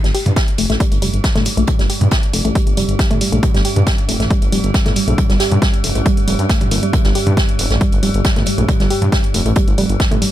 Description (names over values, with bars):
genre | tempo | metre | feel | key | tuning
driving peak-time techno | 137 BPM | 4/4 | straight | unclear | A4 = 440 Hz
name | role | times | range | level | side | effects
woody wave-folded pluck | riff | 0.0-10.3 s | G3 to G4 | -20 LUFS | equal | chorus, tube saturation, sidechain pumping, tape echo
detuned saw bass | bass | 0.0-10.2 s | F1 to G2 | -18 LUFS | equal | sidechain pumping
metallic inharmonic drone | drone | 0.5-10.3 s | G2 to G3 | -24 LUFS | right 1 dB | chorus, built-in reverb, sidechain pumping
punchy analog drum machine | drums | 0.0-10.3 s | hi-hat, toms | -23 LUFS | right 1 dB | none
unplugged drum kit | drums | 0.0-10.3 s | hi-hat, snare drum | -25 LUFS | right 2 dB | sidechain pumping on hats, high-pass filter on hats, high-pass filter on snare, high-pass filter on room
electronic kick drum | drums | 0.4-10.1 s | none | -16 LUFS | equal | overdrive
room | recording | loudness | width
digital ambience | none | -13 LUFS | side -13 dB against mid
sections
0.0-10.3 A section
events
filter sweep on synth arpeggio sound 0.0-10.3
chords
0.0 Fadd9 (rootless)